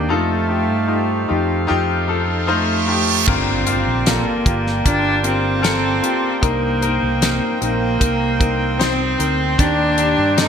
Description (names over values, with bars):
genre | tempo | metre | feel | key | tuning
pop ballad | 76 BPM | 4/4 | straight | G minor | A4 = 440 Hz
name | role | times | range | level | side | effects
rich cello | melody | 0.0-10.5 s | A3 to Eb4 | -20 LUFS | right 2 dB | none
clear concert grand piano | accompaniment | 0.0-10.5 s | G2 to D5 | -21 LUFS | left 5 dB | lush chorus
clear brass ensemble | sustained chords | 0.0-10.5 s | Bb3 to G5 | -26 LUFS | right 2 dB | none
fretless electric bass | bass | 0.0-10.5 s | G1 to G2 | -22 LUFS | equal | ensemble chorus
reverse cymbal and impact | sound effects | 2.2-6.4 s | none | -23 LUFS | right 4 dB | none
damped 70s drum kit | drums | 3.3-10.5 s | crash cymbal, hi-hat, kick drum, snare drum | -19 LUFS | equal | gated reverb
room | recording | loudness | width
moderate plate reverb, RT60 1.5 s | bright 1980s-style digital production | -15 LUFS | side -7 dB against mid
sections
0.0-3.3 A section; 3.3-10.5 B section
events
reverse cymbal 2.2-3.3; impact 3.3-6.4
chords
0.1 F7; 3.3 Gm7; 6.4 Cm7; 9.6 Ebmaj7